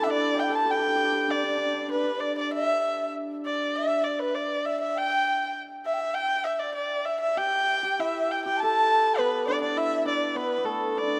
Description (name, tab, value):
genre	chinese traditional, Chinese chamber ensemble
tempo	100 BPM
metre	2/4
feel	rubato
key	D zhi mode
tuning	A4 = 440 Hz
part	rich erhu	melody	0.0-11.2 s	A4 to A5	-28 LUFS	equal	none
part	hammered dulcimer	second line	0.0-11.2 s	A3 to D5	-33 LUFS	equal	none
part	mellow hollow large dizi	second line	0.0-11.2 s	B4 to A5	-33 LUFS	equal	none
room	moderate concert hall reverb, RT60 2.4 s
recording	none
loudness	-26 LUFS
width	mono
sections	0.0-2.5 A section; 2.5-11.2 B section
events	none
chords	none